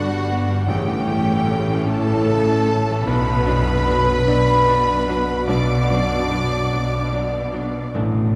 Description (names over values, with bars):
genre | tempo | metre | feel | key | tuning
cinematic | 50 BPM (dotted quarters) | 6/8 | rubato | unclear | A4 = 440 Hz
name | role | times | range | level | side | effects
warm studio violin section | melody | 0.0-7.9 s | F#5 to D6 | -32 LUFS | equal | none
bright clarinet | second line | 0.0-7.9 s | F#4 to D5 | -29 LUFS | equal | none
mellow large flute ensemble | second line | 0.0-7.9 s | F#5 to D6 | -28 LUFS | equal | none
warm studio violin section | second line | 0.0-7.9 s | F#4 to D5 | -31 LUFS | equal | none
rich studio viola section | accompaniment | 0.0-8.0 s | C#3 to D4 | -31 LUFS | equal | none
warm grand piano | accompaniment | 0.0-8.4 s | A1 to D5 | -30 LUFS | equal | none
mellow French horn section | sustained chords | 0.0-8.4 s | B3 to F#4 | -31 LUFS | equal | none
concert harp | arpeggios | 0.0-8.4 s | G2 to B5 | -31 LUFS | equal | none
rich studio cello section | bass | 0.0-8.4 s | G2 to B2 | -27 LUFS | equal | none
rich studio double bass section | bass | 0.0-8.4 s | G1 to B1 | -26 LUFS | equal | none
timpani | percussion | 0.7-1.8, 7.9-8.4 s | A2 | -35 LUFS | equal | none
room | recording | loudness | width
wet cathedral reverb, RT60 4.7 s | recorded in a church or concert hall | -19 LUFS | mono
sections
0.0-8.4 A section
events
timpani fill 7.9-8.4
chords
0.0 G; 0.7 A; 3.1 Bm